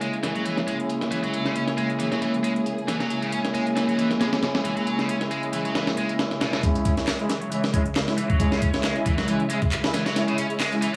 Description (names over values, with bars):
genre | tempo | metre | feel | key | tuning
breakbeat, breaks | 136 BPM | 4/4 | swing 55% on 16ths | C# dorian | A4 = 441 Hz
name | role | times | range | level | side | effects
dark studio string section | sustained chords | 0.0-11.0 s | C#3 to G#4 | -30 LUFS | equal | sidechain pumping, low-pass filter
heavy high-gain guitar | riff | 0.0-11.0 s | B2 to C#4 | -33 LUFS | equal | distortion, low-pass filter, digital delay
clear brass ensemble | stabs | 0.0-10.9 s | G#3 to E4 | -30 LUFS | equal | low-pass filter, digital delay
breakbeat sampler-style drum kit | drums | 0.0-10.9 s | hi-hat, kick drum, snare drum | -29 LUFS | equal | low-pass filter on hats, low-pass filter on snare, low-pass filter on kick, low-pass filter on room
house drum kit | drums | 0.0-10.9 s | handclaps, hi-hat | -38 LUFS | equal | none
room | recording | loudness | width
moderate plate reverb, RT60 1.0 s, digital ambience | vinyl crackle, high-pass filter, small room ambience | -24 LUFS | mono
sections
0.0-6.6 A section; 6.6-11.0 B section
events
build-up 6.6-11.0; filter sweep on distorted electric guitar 6.6-11.0; filter sweep on string section 6.6-11.0; filter sweep 6.6-11.0; drum fill 10.2-11.0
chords
0.0 C#m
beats
0.01 0.46 0.90 | 1.34 1.78 2.22 2.66 | 3.10 3.54 3.99 4.43 | 4.87 5.31 5.75 6.19 | 6.63 7.07 7.51 7.96 | 8.40 8.84 9.28 9.72 | 10.16 10.60